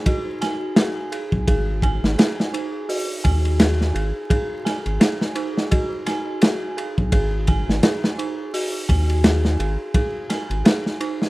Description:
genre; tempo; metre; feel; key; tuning
trip hop; 85 BPM; 4/4; swing 58% on 16ths; unclear; A4 = 440 Hz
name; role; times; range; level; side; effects
dark detuned synth bell; arpeggios; 0.0-11.3 s; D#4 to G#5; -26 LUFS; right 2 dB; chorus, ping-pong delay
crunchy breakbeat drum kit; drums; 0.1-11.3 s; hi-hat, kick drum, ride cymbal, snare drum; -19 LUFS; equal; none
round analog bass; bass; 1.3-10.6 s; G#1 to D#2; -21 LUFS; equal; none
room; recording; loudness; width
light reverb; rough home demo mix, vinyl crackle; -18 LUFS; side -20 dB against mid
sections
0.0-11.3 A section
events
none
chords
0.0 G#7(no3)

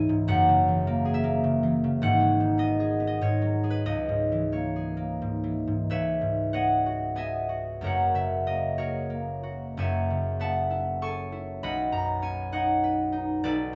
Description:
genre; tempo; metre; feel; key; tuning
classical, solo harp piece; 84-106 BPM; 3/4; rubato; C# dorian; A4 = 439 Hz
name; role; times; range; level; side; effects
concert harp; solo; 0.0-13.8 s; F#1 to C#6; -26 LUFS; equal; none
room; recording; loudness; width
moderate small room reverb, RT60 0.5 s; nothing above 7.7 kHz; -27 LUFS; mono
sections
0.0-5.9 A section; 5.9-13.8 B section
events
none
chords
0.3 F#9; 2.0 G#m7; 3.2 G#7sus4; 3.9 C#m6; 5.9 C#m11; 7.8 F#add9; 9.8 F#m11; 11.6 Badd9

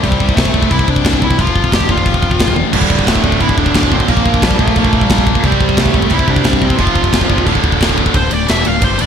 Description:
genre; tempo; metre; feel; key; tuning
heavy metal; 177 BPM; 4/4; straight; D minor; A4 = 438 Hz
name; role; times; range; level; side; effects
high-gain lead guitar; melody; 0.0-9.1 s; G3 to F5; -18 LUFS; right 2 dB; distortion, slapback echo
heavy high-gain guitar; riff; 0.0-9.1 s; D2 to C4; -18 LUFS; left 12 dB; distortion
fuzz picked electric bass; bass; 0.0-9.1 s; D1 to C2; -18 LUFS; equal; overdrive
tight metal drum kit; drums; 0.0-9.1 s; china cymbal, crash cymbal, kick drum, ride cymbal, snare drum, toms; -14 LUFS; equal; none
distorted electric guitar; riff; 2.7-8.2 s; D2 to C4; -18 LUFS; right 12 dB; overdrive, slapback echo
room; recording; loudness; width
light reverb, studio ambience; none; -10 LUFS; side -8 dB against mid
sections
0.0-8.1 A section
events
drum fill 2.6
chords
0.0 C5; 1.4 F5; 2.7 D5; 4.1 Bb5; 5.4 C5; 6.8 F5; 7.5 D5

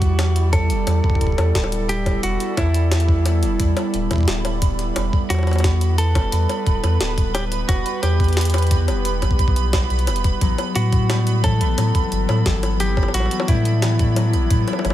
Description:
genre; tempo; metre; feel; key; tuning
IDM; 88 BPM; 4/4; straight; E minor; A4 = 443 Hz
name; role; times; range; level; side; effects
clean electric guitar; melody; 0.0-14.9 s; E4 to A4; -26 LUFS; left 1 dB; ping-pong delay
warbly tape-like pad; sustained chords; 0.0-14.9 s; G3 to D5; -27 LUFS; right 2 dB; chorus, built-in reverb
warm sub bass; bass; 0.0-14.9 s; D1 to A2; -19 LUFS; equal; none
electronic kick drum; drums; 0.0-14.6 s; none; -20 LUFS; equal; studio reverb
jungle sampler-style drum kit; drums; 0.0-14.9 s; bongos, hi-hat, snare drum; -27 LUFS; left 2 dB; studio reverb
pulsing gated texture; texture; 0.0-14.9 s; B5; -31 LUFS; right 9 dB; chorus, built-in reverb
concert harp; arpeggios; 10.4-14.9 s; E3 to E4; -26 LUFS; left 7 dB; tape echo
room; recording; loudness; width
little or no reverb; none; -16 LUFS; side -13 dB against mid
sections
0.0-14.9 A section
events
none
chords
0.0 Em7; 10.4 A9sus4

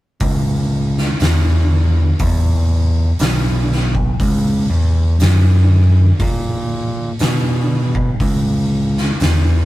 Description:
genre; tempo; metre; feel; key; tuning
stoner and doom metal; 60 BPM; 4/4; straight; C# dorian; A4 = 438 Hz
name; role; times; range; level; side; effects
overdriven picked electric bass; bass; 0.2-9.7 s; B1 to B2; -14 LUFS; equal; none
oversized low-tuned drum kit; drums; 0.2-9.4 s; hi-hat, kick drum, snare drum; -19 LUFS; equal; none
room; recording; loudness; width
moderate booth ambience, RT60 0.2 s; rough rehearsal-room recording, warm saturation; -13 LUFS; side -16 dB against mid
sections
0.2-9.7 A section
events
none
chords
none

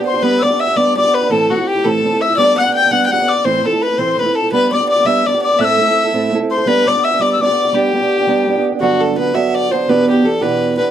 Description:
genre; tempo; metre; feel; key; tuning
celtic folk; 112 BPM (dotted quarters); 6/8; straight; G major; A4 = 439 Hz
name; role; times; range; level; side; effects
dark fiddle; melody; 0.0-10.9 s; F#4 to G5; -15 LUFS; left 2 dB; none
fingerpicked steel-string acoustic guitar; accompaniment; 0.0-10.9 s; E2 to A4; -16 LUFS; right 4 dB; none
bright mid whistle; second line; 0.1-8.6 s; F#5 to G6; -18 LUFS; left 5 dB; none
room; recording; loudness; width
light reverb; dark, warm production; -12 LUFS; side -10 dB against mid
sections
0.2-8.8 A section; 8.8-10.9 B section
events
none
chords
0.2 G; 1.3 Am; 2.4 G; 3.4 Am; 4.5 G; 5.6 Am; 6.7 G; 8.8 Gmaj7; 9.9 Em7

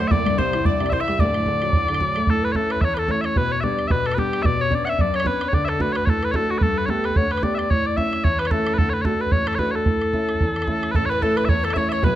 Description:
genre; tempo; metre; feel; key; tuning
celtic folk, Celtic reel; 222 BPM; 4/4; swing 56% on 8ths; A mixolydian; A4 = 440 Hz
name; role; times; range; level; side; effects
mellow small bagpipes; melody; 0.0-12.2 s; F#4 to F#5; -23 LUFS; equal; none
mandolin; second line; 0.0-2.0, 11.0-12.2 s; A4 to E5; -31 LUFS; right 6 dB; none
warm grand piano; accompaniment; 0.0-12.2 s; D1 to G4; -24 LUFS; equal; none
bright wooden-headed alto flute; second line; 0.1-12.2 s; F#4 to E5; -27 LUFS; left 4 dB; none
bodhran; percussion; 0.1-12.1 s; none; -23 LUFS; right 1 dB; none
room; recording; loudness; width
wet recital hall reverb, RT60 1.5 s; close, detailed microphones; -18 LUFS; side -12 dB against mid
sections
0.0-2.3 A section; 2.3-10.9 B section; 10.9-12.2 B section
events
none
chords
0.1 C; 1.2 D; 2.3 A; 3.4 G/B; 4.4 Bmadd9; 5.5 D; 6.6 Gadd9; 7.7 A; 8.8 D; 9.9 A

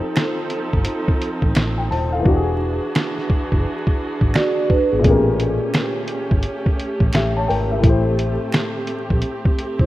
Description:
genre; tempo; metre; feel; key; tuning
lo-fi hip hop; 86 BPM; 4/4; swing 64% on 16ths; unclear; A4 = 445 Hz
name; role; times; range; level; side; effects
dark upright piano; accompaniment; 0.0-9.9 s; A2 to A5; -24 LUFS; left 3 dB; cassette tape, low-pass filter
muted studio string section; sustained chords; 0.0-9.9 s; E3 to A4; -26 LUFS; right 2 dB; low-pass filter
lo-fi sampler-style drum kit; drums; 0.2-9.9 s; finger snaps, hi-hat, kick drum, snare drum; -19 LUFS; equal; none
finger snap; percussion; 0.2-8.7 s; none; -36 LUFS; right 5 dB; none
vintage muted fingered electric bass; bass; 0.7-9.9 s; Eb1 to C2; -22 LUFS; equal; none
vibraphone with soft mallets; second line; 4.3-5.2, 9.8-9.9 s; B3 to D5; -20 LUFS; right 1 dB; low-pass filter, tape echo
room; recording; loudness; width
light reverb; rough home demo mix, vinyl crackle; -17 LUFS; side -16 dB against mid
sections
0.0-9.9 A section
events
hi-hats muted 2.3-5.0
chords
0.0 F7; 2.3 E9; 5.0 A7b9; 7.8 Am7

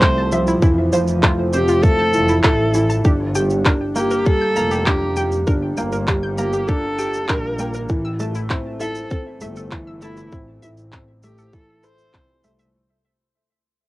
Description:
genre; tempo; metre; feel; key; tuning
piano and strings electronica; 99 BPM; 4/4; straight; unclear; A4 = 440 Hz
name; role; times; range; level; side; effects
warm viola; melody; 0.0-12.4 s; E4 to C5; -22 LUFS; equal; none
felt-muted upright piano; riff; 0.0-12.8 s; E3 to A4; -22 LUFS; equal; cassette tape, analog delay
rich studio double bass section; bass; 0.0-12.6 s; F1 to C2; -24 LUFS; equal; sidechain pumping
electronic handclaps and shaker; drums; 0.0-12.7 s; none; -22 LUFS; equal; cassette tape
electronic kick drum; drums; 0.0-12.3 s; none; -18 LUFS; equal; cassette tape
analog pluck; arpeggios; 0.2-12.6 s; E4 to G6; -27 LUFS; equal; chorus, sidechain pumping, cassette tape, analog delay
room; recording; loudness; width
moderate booth ambience, RT60 0.2 s; home recording on cassette; -16 LUFS; side -19 dB against mid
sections
0.0-12.7 A section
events
drop 0.0-12.7; fade-out 3.0-12.7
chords
0.0 Fmaj7; 3.0 Gm; 7.9 Am

